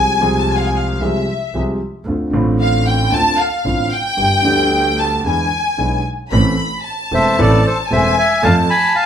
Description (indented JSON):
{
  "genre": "tango",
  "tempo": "114 BPM",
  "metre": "4/4",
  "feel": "rubato",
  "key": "unclear",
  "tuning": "A4 = 441 Hz",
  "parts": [
    { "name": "warm studio violin section", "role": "second line", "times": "0.0-9.1 s", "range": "E5 to B5", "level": "-17 LUFS", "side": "left 1 dB", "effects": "none" },
    { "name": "warm concert grand piano", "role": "accompaniment", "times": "0.0-8.7 s", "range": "E1 to A4", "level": "-18 LUFS", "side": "equal", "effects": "none" },
    { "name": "clear double bass", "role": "bass", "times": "0.0-8.6 s", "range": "E1 to F2", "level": "-20 LUFS", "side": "right 2 dB", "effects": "none" },
    { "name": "bandoneon", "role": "melody", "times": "7.1-9.1 s", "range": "A4 to B5", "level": "-15 LUFS", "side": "equal", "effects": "none" }
  ],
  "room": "wet large studio reverb, RT60 0.9 s",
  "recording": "band playing live in one room",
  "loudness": "-13 LUFS",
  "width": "side -9 dB against mid",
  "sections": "0.0-6.3 A section; 6.3-9.1 B section",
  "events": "violin section solo 0.0-6.3",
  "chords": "0.0 Fm/C; 2.1 Dm7; 4.2 G; 5.2 E7; 6.3 Am; 8.4 F",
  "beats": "0.49 1.02 1.55 | 2.07 2.60 3.13 3.65 | 4.18 4.71 5.24 5.78 | 6.32 6.85 7.37 7.90 | 8.43 8.95"
}